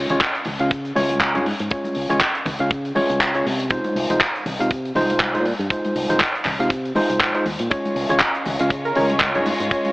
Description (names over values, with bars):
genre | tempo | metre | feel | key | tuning
nu-disco, nu disco | 120 BPM | 4/4 | swing 56% on 16ths | unclear | A4 = 440 Hz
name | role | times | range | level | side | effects
tine electric piano | accompaniment | 0.0-9.9 s | Ab3 to F5 | -22 LUFS | equal | sidechain pumping
fingered electric bass with an envelope filter | bass | 0.0-9.7 s | C2 to Db3 | -27 LUFS | equal | none
big rock drum kit | drums | 0.1-9.9 s | handclaps, hi-hat | -22 LUFS | equal | none
congas | percussion | 0.1-9.9 s | none | -30 LUFS | left 1 dB | none
kick drum | drums | 0.2-9.8 s | none | -20 LUFS | equal | none
rich chamber violin section | sustained chords | 7.7-9.9 s | Ab3 to Db5 | -26 LUFS | equal | sidechain pumping
wide unison lead | melody | 8.8-9.0 s | Bb4 | -28 LUFS | right 2 dB | wide subtle chorus, tape echo
room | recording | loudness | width
light reverb, small room reverb | AM radio sound | -18 LUFS | side -21 dB against mid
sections
0.0-9.9 A section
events
none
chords
0.0 Db; 3.5 Ab6/C; 7.7 Db